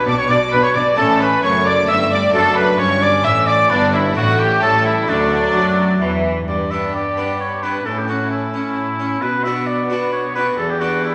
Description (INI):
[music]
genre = classical, baroque-style concerto movement with solo episodes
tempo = 132 BPM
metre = 3/4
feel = straight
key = D major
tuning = A4 = 441 Hz
[part]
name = warm oboe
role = melody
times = 0.0-11.1 s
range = D4 to E5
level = -21 LUFS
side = equal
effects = none
[part]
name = rich chamber violin section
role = second line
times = 0.0-11.1 s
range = B3 to E5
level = -25 LUFS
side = equal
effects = none
[part]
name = harpsichord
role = accompaniment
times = 0.0-11.1 s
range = E2 to G4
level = -25 LUFS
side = equal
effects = none
[part]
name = warm chamber violin section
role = melody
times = 0.1-11.1 s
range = D5 to E6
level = -28 LUFS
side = equal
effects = none
[part]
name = dark chamber viola section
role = accompaniment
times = 0.1-11.1 s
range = F#3 to D4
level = -28 LUFS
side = equal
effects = none
[part]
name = dark studio double bass section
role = bass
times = 0.1-6.5 s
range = F#1 to F#2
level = -28 LUFS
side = equal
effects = none
[part]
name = rich studio cello section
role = bass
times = 0.1-11.1 s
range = E2 to F#3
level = -26 LUFS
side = equal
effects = none
[sound]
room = wet recital hall reverb, RT60 1.4 s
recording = none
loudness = -17 LUFS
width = mono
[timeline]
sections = 0.0-6.5 A section; 6.5-11.1 B section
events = none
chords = 0.0 G/B; 1.0 A; 2.3 D/F#; 3.7 Em/G; 4.2 D/A; 4.6 A7; 5.1 D; 6.5 G; 7.9 A; 9.2 Bm; 10.6 Em7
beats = 0.07 0.53 | 0.98 1.43 1.89 | 2.34 2.80 3.25 | 3.71 4.17 4.63 | 5.09 5.56 6.02 | 6.48 6.94 7.40 | 7.86 8.31 8.77 | 9.22 9.68 10.13 | 10.59 11.04